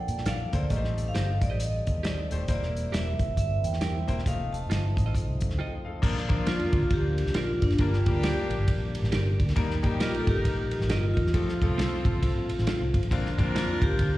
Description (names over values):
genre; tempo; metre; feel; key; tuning
uptempo 1960s-style soul; 136 BPM; 4/4; swing 61% on 8ths; Bb major; A4 = 440 Hz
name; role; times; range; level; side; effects
vibraphone with medium hard mallets; melody; 0.0-14.2 s; D4 to A5; -32 LUFS; equal; slapback echo, tape echo
tonewheel organ; sustained chords; 0.0-14.2 s; D3 to A4; -38 LUFS; equal; slow rotary speaker
vintage muted fingered electric bass; bass; 0.0-14.2 s; Eb1 to Bb2; -28 LUFS; equal; none
warm soul drum kit; drums; 0.1-14.1 s; crash cymbal, hi-hat, kick drum, ride cymbal, snare drum; -28 LUFS; equal; none
clean electric guitar; stabs; 0.3-13.7 s; C4 to E5; -38 LUFS; right 7 dB; slapback echo, tape echo
bright grand piano; accompaniment; 0.5-13.9 s; D3 to G5; -35 LUFS; left 5 dB; none
warm horn section; second line; 6.0-14.2 s; Bb3 to Bb4; -36 LUFS; equal; slapback echo
room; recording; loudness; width
light reverb; live gig heard through the venue's PA, recital hall reverb; -24 LUFS; side -16 dB against mid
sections
0.0-6.0 A section; 6.0-14.2 B section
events
break 5.6-6.0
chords
0.0 Bbmaj7; 0.7 Am7b5; 2.5 C7/E; 4.3 F7; 6.0 Bb; 7.8 Gm; 9.6 Eb; 11.3 F; 13.1 Bbadd9